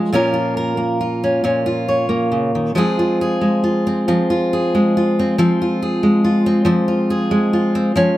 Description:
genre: folk, solo fingerstyle acoustic guitar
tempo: 46 BPM (dotted quarters)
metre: 6/8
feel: rubato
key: unclear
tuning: A4 = 440 Hz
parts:
  - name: fingerpicked steel-string acoustic guitar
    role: solo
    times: 0.0-8.2 s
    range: Bb2 to Db5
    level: -15 LUFS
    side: equal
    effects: none
room: moderate studio reverb, RT60 0.8 s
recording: none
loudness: -15 LUFS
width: side -15 dB against mid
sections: 0.0-8.2 A section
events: none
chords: 0.1 Bbm; 2.8 Fm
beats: | 0.12 1.43 | 2.76 4.09 | 5.40 6.68 | 7.96

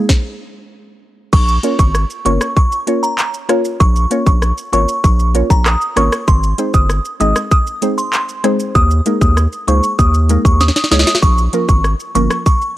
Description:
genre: dancehall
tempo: 97 BPM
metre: 4/4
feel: straight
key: Bb dorian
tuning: A4 = 441 Hz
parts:
  - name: mallet-like synth pluck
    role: accompaniment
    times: 0.0-12.3 s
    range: F3 to Eb5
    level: -18 LUFS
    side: equal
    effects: chorus, phaser
  - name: island pop drum kit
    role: drums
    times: 0.1-12.8 s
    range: crash cymbal, handclaps, hi-hat, kick drum, rim click, shaker, snare drum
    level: -14 LUFS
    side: equal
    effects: overdrive
  - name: glassy synth bell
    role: melody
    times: 1.3-12.6 s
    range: Bb5 to Eb6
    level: -18 LUFS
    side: right 1 dB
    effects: chorus, analog delay
  - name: saturated sub bass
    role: bass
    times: 1.3-12.3 s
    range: G1 to Eb2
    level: -15 LUFS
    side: equal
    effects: none
room: little or no reverb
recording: dry, gritty hardware recording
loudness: -12 LUFS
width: side -15 dB against mid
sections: 0.0-1.3 A section; 1.3-12.8 B section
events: stop 0.1-1.3; drum fill 10.6-11.2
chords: 0.0 N.C.; 1.3 Bbm; 6.3 Ab; 8.8 Ebsus4; 11.2 Bbm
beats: 0.09 0.71 | 1.33 1.95 2.57 3.18 | 3.80 4.42 5.04 5.66 | 6.28 6.90 7.51 8.13 | 8.75 9.37 9.99 10.61 | 11.22 11.84 12.46

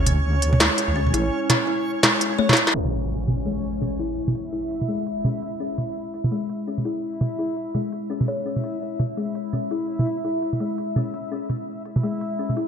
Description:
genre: half-time drum and bass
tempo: 168 BPM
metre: 4/4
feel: swing 59% on 16ths, half-time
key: C# phrygian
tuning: A4 = 440 Hz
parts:
  - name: kalimba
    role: arpeggios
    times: 0.0-12.7 s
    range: G#3 to C#5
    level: -27 LUFS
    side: left 3 dB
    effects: vintage 12-bit sampler grit, low-pass filter, ping-pong delay
  - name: deep soft wobble bass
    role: bass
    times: 0.0-1.3 s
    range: A1 to D2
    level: -21 LUFS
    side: equal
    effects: chorus
  - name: backwards swelling texture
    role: texture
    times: 0.0-12.7 s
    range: C#4 to E5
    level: -30 LUFS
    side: right 1 dB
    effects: built-in reverb
  - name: industrial drum kit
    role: drums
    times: 0.1-12.7 s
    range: hi-hat, snare drum, toms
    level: -20 LUFS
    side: right 1 dB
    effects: gated reverb
  - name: impact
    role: sound effects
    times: 2.7-4.2 s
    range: none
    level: -30 LUFS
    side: equal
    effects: none
room: moderate lush hall reverb, RT60 1.6 s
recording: bright 1980s-style digital production, low-pass filter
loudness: -21 LUFS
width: side -7 dB against mid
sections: 0.0-2.7 A section; 2.7-12.7 B section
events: drum fill 2.4-2.7; band accent 2.7; impact 2.7-4.2; filter sweep on kalimba 2.7-12.7; filter sweep 2.7-12.7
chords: 0.0 Dsus2; 2.7 C#m/G#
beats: 0.24 0.60 0.96 | 1.31 1.67 2.03 2.39 | 2.74 3.10 3.46 3.81 | 4.17 4.53 4.89 5.24 | 5.60 5.96 6.32 6.67 | 7.03 7.39 7.74 8.10 | 8.46 8.81 9.17 9.53 | 9.89 10.24 10.60 10.96 | 11.31 11.67 12.03 12.39

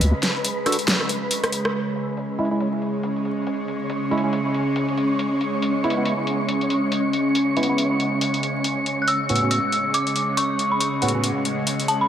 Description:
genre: deep dubstep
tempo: 139 BPM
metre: 4/4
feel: swing 59% on 16ths, half-time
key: C# minor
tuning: A4 = 440 Hz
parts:
  - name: bowed-like drone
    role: sustained chords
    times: 0.0-12.1 s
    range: C#3 to G#3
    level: -26 LUFS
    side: right 1 dB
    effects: built-in reverb, phaser, vintage 12-bit sampler grit
  - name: dubstep drum kit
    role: drums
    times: 0.0-12.0 s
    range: hi-hat, rim click, snare drum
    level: -25 LUFS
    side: left 1 dB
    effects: low-pass filter on hats, low-pass filter on snare
  - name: wind-like tuned noise texture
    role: texture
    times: 0.0-12.1 s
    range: C#4 to C#7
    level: -25 LUFS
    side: equal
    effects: built-in reverb
  - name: percussive organ stab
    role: stabs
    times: 0.7-11.3 s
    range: A2 to A4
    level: -27 LUFS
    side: right 2 dB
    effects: analog chorus, dub echo
  - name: dark detuned synth bell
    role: melody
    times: 9.0-12.1 s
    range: A5 to F#6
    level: -22 LUFS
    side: left 1 dB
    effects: chorus, dub echo
room: moderate lush hall reverb, RT60 1.8 s, digital ambience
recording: vinyl crackle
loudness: -20 LUFS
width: side -9 dB against mid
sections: 0.0-1.7 A section; 1.7-12.1 B section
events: band accent 1.6; filter sweep on drum 1.7-12.1; filter sweep on synth stab 1.7-12.1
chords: 0.0 D; 1.7 C#m; 5.2 E; 8.6 A6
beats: | 0.01 0.45 0.88 1.31 | 1.74 2.17 2.60 3.04 | 3.47 3.90 4.33 4.76 | 5.19 5.62 6.06 6.49 | 6.92 7.35 7.78 8.21 | 8.65 9.08 9.51 9.94 | 10.37 10.80 11.24 11.67

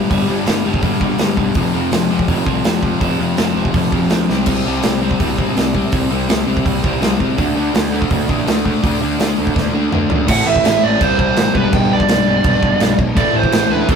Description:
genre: punk rock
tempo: 165 BPM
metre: 4/4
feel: straight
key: G major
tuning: A4 = 441 Hz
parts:
  - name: overdriven electric guitar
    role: riff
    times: 0.0-14.0 s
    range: F2 to D4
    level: -22 LUFS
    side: right 7 dB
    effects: none
  - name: sludgy distorted guitar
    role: riff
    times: 0.0-14.0 s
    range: F2 to D4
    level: -19 LUFS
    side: left 6 dB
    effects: overdrive
  - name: fuzz picked electric bass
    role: bass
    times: 0.1-14.0 s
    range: F1 to F#2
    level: -22 LUFS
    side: right 1 dB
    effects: overdrive
  - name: big rock drum kit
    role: drums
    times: 0.1-14.0 s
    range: crash cymbal, hi-hat, kick drum, snare drum, toms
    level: -18 LUFS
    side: equal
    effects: none
  - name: lead guitar through a small cranked amp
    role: melody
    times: 10.3-14.0 s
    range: A4 to G5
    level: -16 LUFS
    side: right 5 dB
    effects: overdrive
  - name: thick fuzz guitar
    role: riff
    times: 10.3-14.0 s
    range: A2 to E4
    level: -25 LUFS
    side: right 3 dB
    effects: none
room: moderate studio reverb, RT60 0.5 s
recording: rough rehearsal-room recording, warm saturation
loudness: -13 LUFS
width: side -6 dB against mid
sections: 0.0-10.3 A section; 10.3-14.0 B section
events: drum fill 4.3, 9.6-10.3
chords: 0.0 G5; 1.6 F5; 4.3 C5; 7.4 D5; 10.3 Am; 11.0 C; 11.5 G/B; 13.2 Am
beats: | 0.11 0.47 0.83 1.20 | 1.56 1.93 2.29 2.65 | 3.02 3.38 3.75 4.11 | 4.47 4.84 5.20 5.57 | 5.93 6.29 6.66 7.02 | 7.38 7.75 8.11 8.47 | 8.84 9.20 9.56 9.92 | 10.29 10.65 11.01 11.37 | 11.73 12.09 12.45 12.81 | 13.17 13.53 13.89

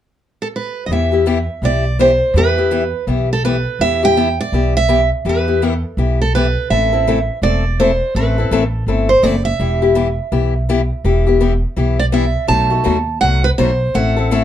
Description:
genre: acoustic string swing (jazz manouche)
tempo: 165 BPM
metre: 4/4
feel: swing 61% on 8ths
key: E minor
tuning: A4 = 441 Hz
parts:
  - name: picked steel-string acoustic guitar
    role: melody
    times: 0.4-14.4 s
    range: A4 to A5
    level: -17 LUFS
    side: right 4 dB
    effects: none
  - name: picked acoustic archtop guitar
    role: accompaniment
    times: 0.9-14.4 s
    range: B2 to A4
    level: -18 LUFS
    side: left 6 dB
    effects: none
  - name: upright bass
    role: bass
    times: 0.9-14.4 s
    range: E1 to E2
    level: -18 LUFS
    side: equal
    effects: none
room: moderate small room reverb, RT60 0.5 s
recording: dark, warm production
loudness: -13 LUFS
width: side -10 dB against mid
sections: 0.9-14.4 A section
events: none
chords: 0.0 N.C.; 0.9 Em; 6.7 Am; 9.6 Em; 12.5 B7b9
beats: 0.17 0.53 | 0.90 1.26 1.62 1.98 | 2.35 2.71 3.07 3.43 | 3.80 4.16 4.52 4.88 | 5.25 5.61 5.97 6.33 | 6.70 7.06 7.42 7.79 | 8.15 8.51 8.87 9.23 | 9.60 9.96 10.32 10.69 | 11.05 11.41 11.77 12.14 | 12.50 12.86 13.22 13.59 | 13.95 14.31

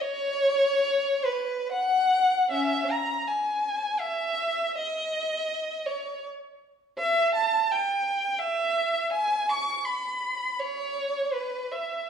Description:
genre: classical, free, expressive piece for unaccompanied violin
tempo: 61-86 BPM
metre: 3/4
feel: rubato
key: unclear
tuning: A4 = 445 Hz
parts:
  - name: warm violin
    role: solo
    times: 0.0-12.1 s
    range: C#4 to C#6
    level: -24 LUFS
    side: equal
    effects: none
room: wet recital hall reverb, RT60 1.4 s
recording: heard from further back in the room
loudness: -24 LUFS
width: side -7 dB against mid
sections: 0.0-12.1 A section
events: none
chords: none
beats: | 0.00 0.79 1.71 | 2.51 3.26 3.99 | 4.75 5.51 6.24 | 6.98 7.70 8.39 | 9.12 9.85 10.59 | 11.33

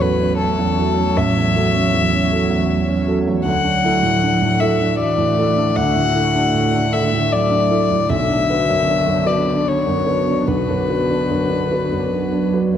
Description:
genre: neoclassical piano and strings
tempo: 77 BPM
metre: 3/4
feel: rubato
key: unclear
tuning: A4 = 442 Hz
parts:
  - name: warm violin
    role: melody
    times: 0.0-12.5 s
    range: A4 to F#5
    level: -19 LUFS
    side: left 6 dB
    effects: tape echo
  - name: dark cello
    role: second line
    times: 0.0-12.8 s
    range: D3 to F#3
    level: -23 LUFS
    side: right 3 dB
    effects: none
  - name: warm grand piano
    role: accompaniment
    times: 0.0-12.8 s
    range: A1 to B4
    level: -19 LUFS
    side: right 2 dB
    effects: none
  - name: warbly tape-like pad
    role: sustained chords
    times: 0.0-12.8 s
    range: A3 to E5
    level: -26 LUFS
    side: equal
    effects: chorus, built-in reverb
room: wet recital hall reverb, RT60 1.4 s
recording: dark, warm production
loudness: -15 LUFS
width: side -9 dB against mid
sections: 0.0-12.8 A section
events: none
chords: 0.0 F#m7/A; 3.5 Dadd9; 8.1 Bm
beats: 0.39 | 1.17 1.94 2.70 | 3.47 4.23 5.00 | 5.78 6.55 7.32 | 8.10 8.87 9.66 | 10.47 11.30 12.13

